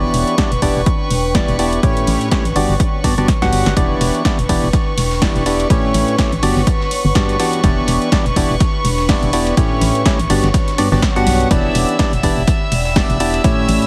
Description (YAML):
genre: piano house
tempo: 124 BPM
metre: 4/4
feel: swing 57% on 16ths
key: E dorian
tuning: A4 = 441 Hz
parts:
  - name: clear chamber violin section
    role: sustained chords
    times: 0.0-13.9 s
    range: B4 to E6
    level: -26 LUFS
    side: equal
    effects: vintage 12-bit sampler grit, sidechain pumping
  - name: percussive organ stab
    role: riff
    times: 0.0-13.9 s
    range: G2 to F#5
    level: -20 LUFS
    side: equal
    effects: subtle chorus, sidechain pumping, tape echo
  - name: organ-like FM bass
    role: bass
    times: 0.0-13.8 s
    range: E1 to B1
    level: -22 LUFS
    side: equal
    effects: sidechain pumping
  - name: deep dark ambient pad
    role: texture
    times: 0.2-13.9 s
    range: D4 to B5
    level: -32 LUFS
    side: equal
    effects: none
  - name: house drum kit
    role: drums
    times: 0.1-13.9 s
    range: hi-hat, snare drum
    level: -25 LUFS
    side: equal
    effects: none
  - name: electronic kick drum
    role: drums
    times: 0.4-13.6 s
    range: none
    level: -19 LUFS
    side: equal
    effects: overdrive
  - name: breakbeat sampler-style drum kit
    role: drums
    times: 3.8-13.8 s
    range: hi-hat, ride cymbal, snare drum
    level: -33 LUFS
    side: equal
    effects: none
room: light reverb, digital ambience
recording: heavily compressed radio sound, multiband compression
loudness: -15 LUFS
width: mono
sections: 0.0-13.9 A section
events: drum fill 3.3-3.8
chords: 0.0 Em7; 1.8 A7; 2.6 Gmaj7; 3.8 Em7; 5.7 A7; 6.4 Gmaj7; 7.6 Em7; 9.6 A7; 10.3 Gmaj7; 11.5 Em7